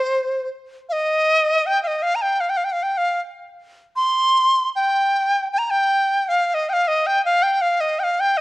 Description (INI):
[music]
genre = chinese traditional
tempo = 78 BPM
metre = 4/4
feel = rubato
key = C yu mode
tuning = A4 = 440 Hz
[part]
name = bright dizi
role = solo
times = 0.0-8.4 s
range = C5 to C6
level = -17 LUFS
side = equal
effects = none
[sound]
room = light reverb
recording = worn, warbling old tape, cassette tape, warbly pitch drift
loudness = -17 LUFS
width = side -20 dB against mid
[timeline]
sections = 0.0-8.4 A section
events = none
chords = none